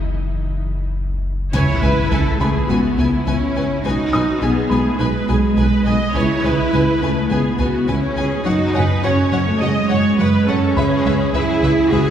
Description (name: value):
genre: cinematic, hybrid orchestral and electronic film score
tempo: 104 BPM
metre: 4/4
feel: straight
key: C# minor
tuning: A4 = 440 Hz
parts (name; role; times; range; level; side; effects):
- warm sub bass; bass; 0.0-1.5 s; F#1; -25 LUFS; left 1 dB; none
- warm symphonic violin section; second line; 1.5-12.0 s; B4 to G#5; -28 LUFS; left 3 dB; none
- rich symphonic viola section; accompaniment; 1.5-12.1 s; E4 to D#5; -24 LUFS; right 1 dB; none
- mellow French horn section; sustained chords; 1.5-12.1 s; G#3 to G#4; -24 LUFS; left 2 dB; none
- soft round pluck; arpeggios; 1.5-12.1 s; C#3 to G#4; -26 LUFS; left 2 dB; chorus
- dark tuba; bass; 1.5-12.0 s; F#1 to C#2; -24 LUFS; right 1 dB; none
- rich symphonic cello section; bass; 1.5-12.1 s; G#3 to G#4; -21 LUFS; right 2 dB; none
- warm studio double bass section; bass; 1.5-12.0 s; B1 to F#2; -23 LUFS; right 1 dB; none
- impact; sound effects; 1.5-3.8 s; none; -24 LUFS; left 1 dB; none
- felt-muted upright piano; texture; 2.4-12.1 s; B4 to D#6; -30 LUFS; equal; none
room: wet cathedral reverb, RT60 5.4 s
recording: recorded in a church or concert hall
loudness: -15 LUFS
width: side -9 dB against mid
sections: 0.0-1.5 A section; 1.5-12.1 B section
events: break 0.0-1.5; impact 1.5-3.8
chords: 0.0 N.C.; 1.5 C#m7; 3.8 G#m7/B; 6.1 C#m7; 8.5 F#sus2; 10.8 C#m7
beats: 0.38 0.96 | 1.53 2.11 2.69 3.26 | 3.84 4.42 4.99 5.57 | 6.15 6.72 7.30 7.88 | 8.46 9.03 9.61 10.19 | 10.76 11.34 11.92